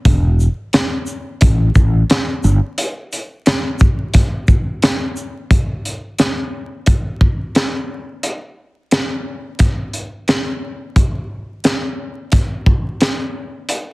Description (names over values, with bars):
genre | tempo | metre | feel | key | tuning
hip hop, boom-bap hip-hop | 88 BPM | 4/4 | swing 55% on 16ths | unclear | A4 = 438 Hz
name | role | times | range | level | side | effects
fretless electric bass | bass | 0.1-2.6 s | E1 to A1 | -13 LUFS | equal | wide subtle chorus
crunchy breakbeat drum kit | drums | 0.1-13.9 s | hi-hat, kick drum, shaker, snare drum | -15 LUFS | equal | none
room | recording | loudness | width
little or no reverb | dense, heavily limited modern master, vinyl crackle | -15 LUFS | side -22 dB against mid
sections
0.0-5.5 A section; 5.5-13.9 B section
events
break 2.8-5.5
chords
none